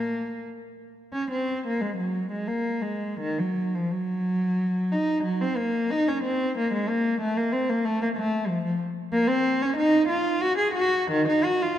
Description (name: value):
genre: classical, baroque-style suite movement for unaccompanied cello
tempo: 79-95 BPM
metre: 3/4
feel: rubato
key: Bb minor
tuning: A4 = 438 Hz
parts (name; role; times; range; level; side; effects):
- warm cello; solo; 0.0-11.8 s; Eb3 to Ab4; -23 LUFS; equal; none
room: moderate concert hall reverb, RT60 2.4 s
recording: dark, warm production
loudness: -23 LUFS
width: side -11 dB against mid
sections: 0.0-1.1 A section; 1.1-11.8 A section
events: none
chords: none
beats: 0.42 | 1.13 1.82 2.48 | 3.20 3.91 4.58 | 5.24 5.91 6.56 | 7.21 7.86 8.50 | 9.14 9.79 10.43 | 11.12